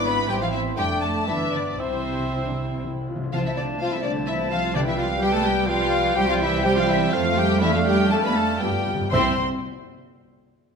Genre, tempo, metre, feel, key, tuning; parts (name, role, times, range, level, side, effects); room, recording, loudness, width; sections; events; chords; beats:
quick classical-period movement for symphony orchestra; 114-129 BPM; 3/4; rubato; C major; A4 = 439 Hz
warm studio violin section; melody; 0.0-9.4 s; C5 to C6; -28 LUFS; left 4 dB
dark clarinet; second line; 0.0-9.3 s; D4 to D5; -32 LUFS; equal
flute section; second line; 0.0-9.4 s; C5 to B5; -31 LUFS; left 4 dB
warm symphonic violin section; second line; 0.0-9.4 s; C4 to C5; -31 LUFS; left 2 dB
dark studio viola section; accompaniment; 0.0-9.4 s; G3 to F4; -31 LUFS; right 2 dB
mellow bassoon; accompaniment; 0.0-9.3 s; F3 to C4; -31 LUFS; right 2 dB
warm French horn section; sustained chords; 0.0-9.3 s; A3 to B4; -29 LUFS; left 4 dB
dark studio double bass section; bass; 0.0-9.4 s; F1 to G2; -30 LUFS; right 3 dB
warm studio cello section; bass; 0.0-9.4 s; C3 to C4; -28 LUFS; right 4 dB
mellow cor anglais; second line; 0.3-9.3 s; C5 to A5; -31 LUFS; right 4 dB
timpani; percussion; 1.8-5.4, 8.6-9.4 s; G2 to C3; -32 LUFS; left 1 dB
wet recital hall reverb, RT60 1.6 s; minimal, uncompressed stereo recording; -20 LUFS; side -6 dB against mid
0.0-3.3 A section; 3.3-9.1 B section; 9.1-10.7 C section
timpani fill 1.8-3.3, 8.6-9.1
0.3 Am; 0.8 Dm/F; 1.3 G; 1.8 C; 3.3 F/C; 4.8 G7/C; 6.2 C; 7.1 F; 7.6 Dm/F; 8.6 G7; 9.1 C
| 0.29 0.78 1.28 | 1.79 2.31 2.83 | 3.33 3.81 4.29 | 4.75 5.22 5.69 | 6.17 6.65 7.13 | 7.61 8.11 8.62 | 9.13